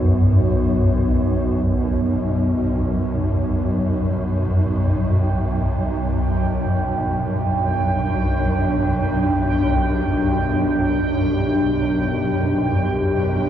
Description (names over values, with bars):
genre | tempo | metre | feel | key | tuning
dark ambient drone | free time | none | none | unclear | A4 = 440 Hz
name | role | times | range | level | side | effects
deep dark ambient pad | sustained chords | 0.0-13.5 s | B2 to C#5 | -23 LUFS | left 1 dB | chorus, built-in reverb
swarming drone | drone | 0.0-13.5 s | B1 to F#2 | -19 LUFS | equal | built-in reverb
bubbling stepped-filter texture | texture | 4.9-13.5 s | G5 | -27 LUFS | right 6 dB | chorus, built-in reverb
room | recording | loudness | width
wet huge ambient reverb, RT60 8.9 s | worn, warbling old tape, cassette tape, warbly pitch drift, nothing above 8.0 kHz | -18 LUFS | side -10 dB against mid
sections
0.0-13.5 A section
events
none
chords
0.0 B5; 4.5 G/B